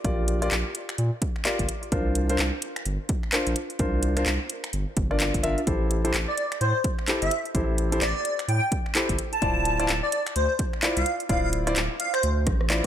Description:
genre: UK garage, two-step garage.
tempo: 128 BPM.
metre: 4/4.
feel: swing 60% on 16ths.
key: D minor.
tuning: A4 = 440 Hz.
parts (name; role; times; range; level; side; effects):
warm concert grand piano; stabs; 0.0-12.9 s; D4 to E5; -29 LUFS; left 1 dB; dub echo.
saturated sub bass; bass; 0.0-12.8 s; D1 to Bb2; -27 LUFS; equal; sidechain pumping.
electronic kick drum; drums; 0.0-12.9 s; none; -28 LUFS; equal; overdrive.
house drum kit; drums; 0.0-12.9 s; finger snaps, handclaps, hi-hat, rim click; -28 LUFS; equal; overdrive.
airy dreamy lead; melody; 6.3-12.9 s; C5 to A5; -27 LUFS; equal; chorus, dub echo.
room: light reverb, digital ambience.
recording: none.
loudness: -23 LUFS.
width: side -10 dB against mid.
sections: 0.0-12.9 A section.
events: drum fill 12.5-12.9.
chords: 0.0 Bb6; 1.7 C9sus4; 5.7 Am7; 9.2 Dm9.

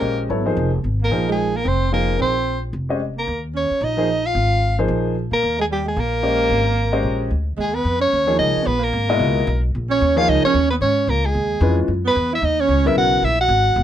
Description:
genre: modal jazz.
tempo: 222 BPM.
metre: 4/4.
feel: swing 60% on 8ths.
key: Eb phrygian from 7.6 s.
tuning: A4 = 440 Hz.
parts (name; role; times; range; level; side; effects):
clear soprano saxophone; melody; 0.0-13.8 s; G4 to Gb5; -20 LUFS; left 1 dB; none.
breathy alto saxophone; second line; 0.0-13.8 s; G3 to Gb4; -24 LUFS; right 7 dB; none.
warm concert grand piano; accompaniment; 0.0-13.2 s; Cb3 to Eb5; -22 LUFS; left 2 dB; none.
upright bass; bass; 0.0-13.8 s; Fb1 to Bb2; -22 LUFS; equal; none.
room: light reverb.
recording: none.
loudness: -17 LUFS.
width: side -10 dB against mid.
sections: 0.0-7.6 A section; 7.6-13.8 B section.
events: none.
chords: 0.0 Bb9sus4; 3.3 Eb9sus4; 11.9 Gb9sus4.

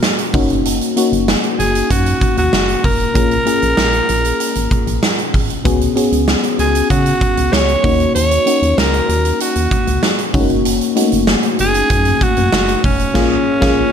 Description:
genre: 1980s-style pop.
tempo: 96 BPM.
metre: 4/4.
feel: straight.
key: F# major.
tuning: A4 = 440 Hz.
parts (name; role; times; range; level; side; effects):
raspy alto saxophone; melody; 0.0-13.9 s; C#4 to C#5; -17 LUFS; equal; ping-pong delay.
FM electric piano with soft pad layer; accompaniment; 0.0-13.9 s; G#3 to G#4; -18 LUFS; left 3 dB; chorus.
huge arena drum kit; drums; 0.0-13.8 s; crash cymbal, hi-hat, kick drum, snare drum; -17 LUFS; right 1 dB; gated reverb.
solid FM bass; bass; 0.3-13.8 s; E#1 to C#3; -19 LUFS; right 1 dB; none.
room: light reverb, studio ambience.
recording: none.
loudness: -12 LUFS.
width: side -8 dB against mid.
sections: 0.0-13.9 A section.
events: band accent 13.2-13.9.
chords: 0.3 F#6; 3.2 A#m7; 5.7 C#7sus4; 7.8 D#m7; 10.3 F#6; 13.2 A#m7.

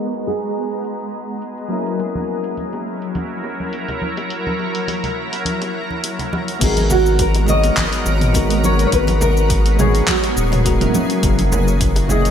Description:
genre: sunset chillout.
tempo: 104 BPM.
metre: 4/4.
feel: swing 54% on 16ths.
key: G# minor.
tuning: A4 = 440 Hz.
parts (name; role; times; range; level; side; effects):
nylon-string guitar; melody; 0.0-1.7, 6.6-12.3 s; F#4 to D#5; -21 LUFS; right 1 dB; wide subtle chorus, ping-pong delay.
soft electric-piano-like synth keys; accompaniment; 0.0-12.3 s; F#3 to D#5; -23 LUFS; left 1 dB; chorus, phaser, auto-pan, ping-pong delay.
shimmering ambient pad; sustained chords; 0.0-12.3 s; A#2 to A#5; -24 LUFS; right 1 dB; chorus, built-in reverb.
deep house drum kit; drums; 0.1-12.3 s; cabasa, crash cymbal, handclaps, hi-hat, toms; -23 LUFS; equal; low-pass filter on perc, low-pass filter on hats, low-pass filter on toms, low-pass filter on snare, low-pass filter on cymbals, gated reverb.
bongos and congas; percussion; 2.0-12.2 s; none; -27 LUFS; equal; none.
round analog bass; bass; 6.6-12.3 s; D#1 to G#1; -17 LUFS; equal; none.
electronic kick drum; drums; 6.6-11.9 s; none; -22 LUFS; equal; none.
room: moderate lush hall reverb, RT60 2.5 s.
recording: bright 1980s-style digital production, low-pass filter.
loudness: -16 LUFS.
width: side -8 dB against mid.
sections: 0.0-6.6 A section; 6.6-12.3 B section.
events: filter sweep on drum 0.0-6.6; filter sweep 0.0-6.6.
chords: 0.0 G#m9; 1.7 F#7; 6.6 G#m9; 10.9 F#7.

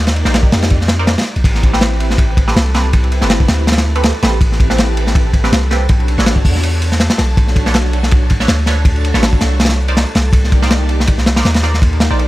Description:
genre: drum and bass, jungle.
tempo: 162 BPM.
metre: 4/4.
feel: swing 55% on 16ths.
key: A dorian.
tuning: A4 = 440 Hz.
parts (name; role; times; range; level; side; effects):
soft string machine; sustained chords; 0.0-12.3 s; Bb3 to D5; -24 LUFS; equal; ensemble chorus.
long sustained 808-style bass; bass; 0.0-12.3 s; G1 to F2; -15 LUFS; equal; none.
crunchy breakbeat drum kit; drums; 0.1-12.3 s; crash cymbal, hi-hat, kick drum, ride cymbal, snare drum; -13 LUFS; equal; none.
band-passed chord stab; stabs; 0.3-12.2 s; C4 to D5; -23 LUFS; right 2 dB; phaser, dub echo.
backwards swelling texture; texture; 2.7-12.3 s; A4 to A5; -31 LUFS; left 1 dB; built-in reverb.
room: studio reverb.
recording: none.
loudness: -11 LUFS.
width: side -17 dB against mid.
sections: 0.0-1.4 A section; 1.4-12.3 A section.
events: drop 0.0-1.4, 1.4-12.3.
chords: 0.0 Cm9; 1.4 Am9; 5.9 Bm9; 9.6 Cm9.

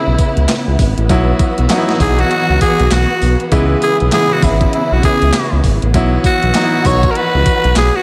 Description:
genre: R&B, new jack swing.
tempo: 99 BPM.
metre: 4/4.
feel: swing 61% on 16ths.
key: unclear.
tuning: A4 = 438 Hz.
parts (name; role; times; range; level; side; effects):
raspy tenor saxophone; melody; 0.0-8.0 s; E4 to C#5; -18 LUFS; equal; analog delay.
bright grand piano; accompaniment; 0.0-8.0 s; C#3 to E4; -21 LUFS; equal; none.
warm studio string section; sustained chords; 0.0-8.0 s; C#3 to F#4; -22 LUFS; equal; none.
smooth synth bass; bass; 0.1-7.9 s; G#1 to C#2; -17 LUFS; equal; none.
clean 12-bit digital drum machine; drums; 0.2-7.9 s; handclaps, hi-hat, kick drum, snare drum, tambourine; -19 LUFS; equal; overdrive.
room: moderate lush hall reverb, RT60 1.9 s, small room ambience.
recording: dreamy mix soaked in reverb.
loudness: -13 LUFS.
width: mono.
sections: 0.0-8.0 A section.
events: none.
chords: 0.0 C#m7; 1.1 Bsus4; 3.5 C#m7; 5.9 Bsus4.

